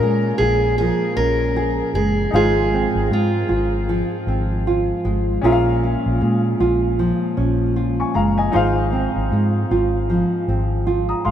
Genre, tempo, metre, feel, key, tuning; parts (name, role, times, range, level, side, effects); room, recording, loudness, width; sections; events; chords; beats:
acoustic pop; 77 BPM; 4/4; swing 60% on 16ths; Bb minor; A4 = 440 Hz
fingerpicked steel-string acoustic guitar; melody; 0.0-4.6 s; F4 to Bb4; -22 LUFS; equal
bright upright piano; accompaniment; 0.0-11.3 s; Db4 to Eb6; -27 LUFS; left 4 dB
nylon-string guitar; accompaniment; 0.0-11.3 s; Ab2 to Ab4; -20 LUFS; right 2 dB
vintage muted fingered electric bass; bass; 0.0-11.3 s; Gb1 to Bb2; -21 LUFS; equal
moderate huge ambient reverb, RT60 7.7 s; in a vast, echoing space; -16 LUFS; side -10 dB against mid
0.0-11.3 A section
0.0 Bbm7; 2.3 Fm7/Ab; 5.4 Bbm7; 8.5 Fm7/Ab
0.00 0.78 1.55 | 2.33 3.11 3.88 4.66 | 5.44 6.21 6.99 7.76 | 8.54 9.32 10.10 10.87